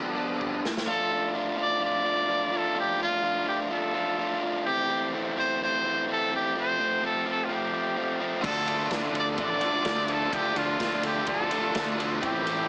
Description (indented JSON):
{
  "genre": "indie rock",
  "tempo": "127 BPM",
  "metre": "4/4",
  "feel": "straight",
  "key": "unclear",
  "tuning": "A4 = 440 Hz",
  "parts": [
    { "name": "overdriven electric guitar", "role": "riff", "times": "0.0-12.7 s", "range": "E3 to F4", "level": "-32 LUFS", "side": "equal", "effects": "none" },
    { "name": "overdriven electric guitar", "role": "riff", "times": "0.0-0.6, 8.4-12.7 s", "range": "G2 to F4", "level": "-34 LUFS", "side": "equal", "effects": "analog chorus, slapback echo" },
    { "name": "raw garage drum kit", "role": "drums", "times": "0.4-0.9, 8.4-12.6 s", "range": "crash cymbal, kick drum, ride cymbal, snare drum", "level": "-36 LUFS", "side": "equal", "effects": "none" },
    { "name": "bright trumpet", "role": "melody", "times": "0.9-12.7 s", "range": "F4 to D5", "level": "-30 LUFS", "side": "equal", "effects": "slapback echo" },
    { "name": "tonewheel organ", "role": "sustained chords", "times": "0.9-12.7 s", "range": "F4 to A5", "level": "-44 LUFS", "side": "equal", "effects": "none" },
    { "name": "fuzz fingered electric bass", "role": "bass", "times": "8.4-12.7 s", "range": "A1 to D2", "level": "-38 LUFS", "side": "equal", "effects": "overdrive" }
  ],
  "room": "light reverb",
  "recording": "heavily compressed radio sound, multiband compression, small speaker sound",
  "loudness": "-27 LUFS",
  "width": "mono",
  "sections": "0.9-12.7 A section",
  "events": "break 0.0-0.9; drum fill 0.4-0.9",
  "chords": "0.0 G7; 0.9 Dm; 4.7 Am7; 6.5 Fadd9; 8.4 Dm"
}